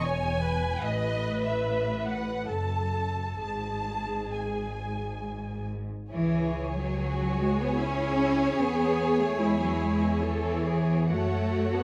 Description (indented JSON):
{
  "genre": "classical, slow romantic movement for string orchestra",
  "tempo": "63-75 BPM",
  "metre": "3/4",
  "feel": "rubato",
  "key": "C# minor",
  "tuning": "A4 = 440 Hz",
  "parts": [
    { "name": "warm studio violin section", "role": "melody", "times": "0.0-11.8 s", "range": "D#5 to A5", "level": "-39 LUFS", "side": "equal", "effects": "none" },
    { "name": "warm studio violin section", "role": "second line", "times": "0.0-11.8 s", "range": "G#4 to A5", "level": "-37 LUFS", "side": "equal", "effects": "none" },
    { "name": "rich symphonic viola section", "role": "accompaniment", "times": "0.0-11.8 s", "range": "E4 to C#5", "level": "-35 LUFS", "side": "equal", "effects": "none" },
    { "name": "warm studio cello section", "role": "bass", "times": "0.0-11.8 s", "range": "E2 to C#4", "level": "-32 LUFS", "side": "equal", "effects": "none" },
    { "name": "warm studio double bass section", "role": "bass", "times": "0.0-11.8 s", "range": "E1 to F#2", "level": "-35 LUFS", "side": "equal", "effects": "none" }
  ],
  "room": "moderate recital hall reverb, RT60 1.3 s",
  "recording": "none",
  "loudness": "-28 LUFS",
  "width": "mono",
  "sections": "0.0-6.1 A section; 6.1-11.8 B section",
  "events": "none",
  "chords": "0.0 C#m/E; 0.8 B7/A; 2.5 F#m; 3.4 N.C.; 6.1 C#m; 8.6 C#m/E; 11.1 F#m"
}